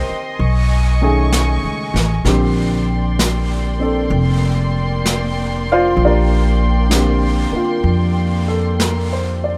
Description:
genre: jazz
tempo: 64 BPM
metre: 4/4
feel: swing 66% on 8ths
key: Bb major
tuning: A4 = 441 Hz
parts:
  - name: warm baby grand piano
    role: accompaniment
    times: 0.0-9.6 s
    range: D3 to F5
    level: -22 LUFS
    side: equal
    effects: none
  - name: muted chamber string section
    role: sustained chords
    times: 0.0-9.6 s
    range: Bb3 to C#6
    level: -26 LUFS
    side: equal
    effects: none
  - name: upright bass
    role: bass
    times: 0.0-9.6 s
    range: F1 to F2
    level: -19 LUFS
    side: equal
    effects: none
  - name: vintage brush drum kit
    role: drums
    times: 0.4-9.6 s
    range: brushed snare drum, hi-hat, snare drum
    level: -26 LUFS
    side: equal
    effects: none
room: light reverb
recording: none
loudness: -16 LUFS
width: mono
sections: 0.0-9.6 A section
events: none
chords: 0.4 B13; 2.2 Bb69

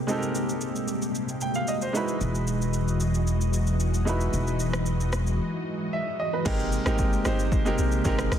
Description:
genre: amapiano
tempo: 113 BPM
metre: 4/4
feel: straight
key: unclear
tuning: A4 = 440 Hz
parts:
  - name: clear baby grand piano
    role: accompaniment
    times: 0.0-8.4 s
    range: Ab3 to G5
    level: -29 LUFS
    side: right 3 dB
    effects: none
  - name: string machine, cellos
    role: sustained chords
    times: 0.0-8.4 s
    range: C3 to D#5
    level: -30 LUFS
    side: left 1 dB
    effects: ensemble chorus
  - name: deep house drum kit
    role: drums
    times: 0.1-8.4 s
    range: crash cymbal, hi-hat, kick drum, rim click, shaker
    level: -31 LUFS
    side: equal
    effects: overdrive
  - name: upright bass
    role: bass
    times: 2.2-5.4 s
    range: E1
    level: -25 LUFS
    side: equal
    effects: none
  - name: deep log drum bass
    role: bass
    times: 6.5-8.4 s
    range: G1 to Bb1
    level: -28 LUFS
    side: equal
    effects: none
room: light reverb, digital ambience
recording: dense, heavily limited modern master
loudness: -24 LUFS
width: side -9 dB against mid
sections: 0.0-6.5 A section; 6.5-8.4 B section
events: break 5.4-6.5; drop 6.5-8.4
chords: 0.0 Abmaj9; 1.9 Emaj9; 6.5 Abmaj9

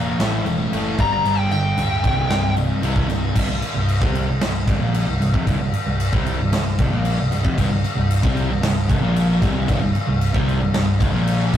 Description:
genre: hard rock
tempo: 114 BPM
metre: 4/4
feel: straight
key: C mixolydian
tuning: A4 = 440 Hz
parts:
  - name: cranked stack guitar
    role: riff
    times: 0.0-11.6 s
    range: C2 to C4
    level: -24 LUFS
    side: right 2 dB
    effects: overdrive
  - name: overdriven electric guitar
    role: riff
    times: 0.0-3.4, 7.6-11.6 s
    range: C2 to C4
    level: -25 LUFS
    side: equal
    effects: none
  - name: overdriven semi-hollow guitar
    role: riff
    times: 0.0-11.6 s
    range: C2 to C4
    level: -25 LUFS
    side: left 2 dB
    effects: none
  - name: picked electric bass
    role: bass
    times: 0.0-11.6 s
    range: C1 to C2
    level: -25 LUFS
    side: equal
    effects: none
  - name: big rock drum kit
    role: drums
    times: 0.2-11.6 s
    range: crash cymbal, kick drum, snare drum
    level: -22 LUFS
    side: equal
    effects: none
  - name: biting lead guitar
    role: melody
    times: 1.0-2.5 s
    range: G5 to Bb5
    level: -21 LUFS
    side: left 2 dB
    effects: overdrive
room: wet booth ambience, RT60 0.2 s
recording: rough rehearsal-room recording, tube saturation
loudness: -17 LUFS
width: side -10 dB against mid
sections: 0.0-3.4 A section; 3.4-11.6 B section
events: lead electric guitar solo 0.0-3.4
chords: 0.2 A5; 1.0 G5; 2.0 C5

